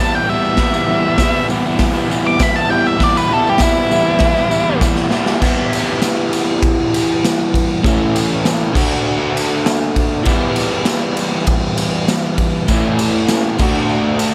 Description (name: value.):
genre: garage rock duo or trio.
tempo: 99 BPM.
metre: 4/4.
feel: straight.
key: E minor.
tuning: A4 = 442 Hz.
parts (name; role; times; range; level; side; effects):
octave-fuzz lead guitar; melody; 0.0-4.8 s; E4 to D6; -19 LUFS; equal; distortion.
crunchy overdriven guitar; riff; 0.0-14.3 s; A2 to F#4; -19 LUFS; equal; none.
tambourine; percussion; 0.1-14.3 s; none; -34 LUFS; equal; none.
raw garage drum kit; drums; 0.6-14.3 s; crash cymbal, hi-hat, kick drum, ride cymbal, snare drum; -20 LUFS; equal; none.
room: light reverb.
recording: none.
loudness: -16 LUFS.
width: mono.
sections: 0.0-5.4 A section; 5.4-14.3 B section.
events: lead electric guitar solo 0.0-5.4; drum fill 4.8-5.4.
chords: 0.0 Em; 7.8 A; 8.8 D; 10.3 Em; 12.7 A; 13.6 D.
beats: | 0.59 1.19 1.80 2.40 | 3.01 3.61 4.22 4.82 | 5.43 6.03 6.64 7.24 | 7.85 8.45 9.06 9.66 | 10.27 10.87 11.48 12.08 | 12.69 13.29 13.90.